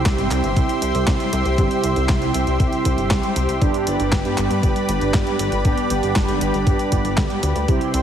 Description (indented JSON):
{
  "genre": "italo disco",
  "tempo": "118 BPM",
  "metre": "4/4",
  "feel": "straight",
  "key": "G major",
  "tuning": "A4 = 439 Hz",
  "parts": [
    { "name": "lush unison pad", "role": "sustained chords", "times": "0.0-8.0 s", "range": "G4 to C6", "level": "-24 LUFS", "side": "left 2 dB", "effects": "chorus" },
    { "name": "mellow synth brass", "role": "stabs", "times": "0.0-8.0 s", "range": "G2 to G4", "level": "-22 LUFS", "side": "right 3 dB", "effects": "chorus, vintage 12-bit sampler grit, ping-pong delay" },
    { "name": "chorused synth bass", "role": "bass", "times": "0.0-8.0 s", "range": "D1 to G2", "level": "-23 LUFS", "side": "equal", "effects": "none" },
    { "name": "clean 12-bit digital drum machine", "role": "drums", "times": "0.1-8.0 s", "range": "handclaps, hi-hat, snare drum", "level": "-26 LUFS", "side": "equal", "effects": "none" },
    { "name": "electronic kick drum", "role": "drums", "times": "0.1-7.8 s", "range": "none", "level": "-20 LUFS", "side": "equal", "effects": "none" }
  ],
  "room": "moderate lush hall reverb, RT60 2.4 s",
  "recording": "heavily compressed radio sound, multiband compression",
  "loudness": "-17 LUFS",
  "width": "side -9 dB against mid",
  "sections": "0.0-8.0 A section",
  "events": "none",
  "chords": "0.0 C; 3.6 G"
}